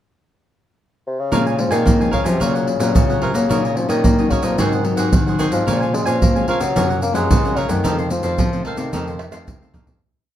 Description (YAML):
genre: samba and choro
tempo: 110 BPM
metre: 4/4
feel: straight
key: Bb minor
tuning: A4 = 439 Hz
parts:
  - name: mellow bassoon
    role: melody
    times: 1.1-9.7 s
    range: C3 to Bb3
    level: -21 LUFS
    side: left 1 dB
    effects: plate reverb
  - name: cavaquinho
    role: accompaniment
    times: 1.3-10.0 s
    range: Eb4 to Ab5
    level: -26 LUFS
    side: right 4 dB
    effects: none
  - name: nylon-string guitar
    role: accompaniment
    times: 1.3-10.0 s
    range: F2 to F4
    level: -25 LUFS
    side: left 5 dB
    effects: none
  - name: nylon-string guitar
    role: bass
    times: 1.3-10.0 s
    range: F2 to Bb3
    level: -22 LUFS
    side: left 1 dB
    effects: none
  - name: tube shaker, surdo, pandeiro and tamborim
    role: percussion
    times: 1.3-10.0 s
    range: none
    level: -20 LUFS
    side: right 1 dB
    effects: none
room: light reverb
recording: dark, warm production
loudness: -15 LUFS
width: side -11 dB against mid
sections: 0.0-1.3 pickup bar; 1.3-10.0 A section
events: fade-out 7.8-10.0; drum fill 9.2-10.0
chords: 0.0 N.C.; 1.3 Bbm7; 2.4 Gbmaj7/Bb; 3.5 Ebm7/Bb; 4.6 Ab7; 5.7 Bbm7; 6.8 Gbmaj7; 7.8 F7